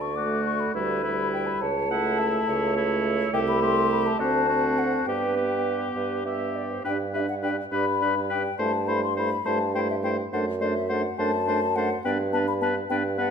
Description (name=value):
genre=quick classical-period movement for wind quintet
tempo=69 BPM (dotted quarters)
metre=6/8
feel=straight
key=G major from 3.3 s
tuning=A4 = 440 Hz
part: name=mellow hollow silver concert flute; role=melody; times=0.0-13.3 s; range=D5 to D6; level=-29 LUFS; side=left 8 dB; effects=none
part: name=bright clarinet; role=accompaniment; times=0.0-13.3 s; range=D4 to F#5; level=-32 LUFS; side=right 8 dB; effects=none
part: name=mellow bassoon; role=bass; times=0.0-13.3 s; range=C2 to G2+20c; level=-28 LUFS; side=right 3 dB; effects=none
part: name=clear oboe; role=second line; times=0.2-13.3 s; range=E4 to C5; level=-30 LUFS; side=left 4 dB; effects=none
part: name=warm French horn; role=accompaniment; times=0.2-13.3 s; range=G3 to D4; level=-30 LUFS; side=right 1 dB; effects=none
room=wet recital hall reverb, RT60 1.5 s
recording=none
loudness=-23 LUFS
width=side -7 dB against mid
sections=0.0-6.8 A section; 6.8-13.3 B section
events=none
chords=0.0 D; 0.7 Em7/D; 1.6 A/C#; 3.3 Am7/C; 4.2 D7; 5.1 G; 8.6 Am7/G; 10.3 D7/F#; 12.1 G